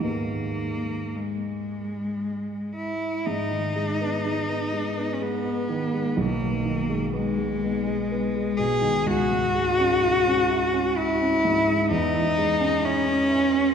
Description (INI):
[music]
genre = classical, romantic duo for cello and grand piano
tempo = 54-65 BPM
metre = 3/4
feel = rubato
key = G# minor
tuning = A4 = 436 Hz
[part]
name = rich cello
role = melody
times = 0.0-13.7 s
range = G#3 to G#4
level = -24 LUFS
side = left 1 dB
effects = none
[part]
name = dark concert grand piano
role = accompaniment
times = 0.0-13.7 s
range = B1 to E4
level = -27 LUFS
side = right 1 dB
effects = none
[sound]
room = wet church reverb, RT60 3.4 s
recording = recorded in a church or concert hall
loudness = -22 LUFS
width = side -7 dB against mid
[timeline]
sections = 0.0-3.3 A section; 3.3-13.7 A section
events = none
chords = 0.1 G#m; 6.2 G#m/B; 9.1 C#m; 11.9 C#m/E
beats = | 0.06 1.16 2.22 | 3.27 4.26 5.22 | 6.18 7.15 8.11 | 9.07 10.03 10.97 | 11.91 12.84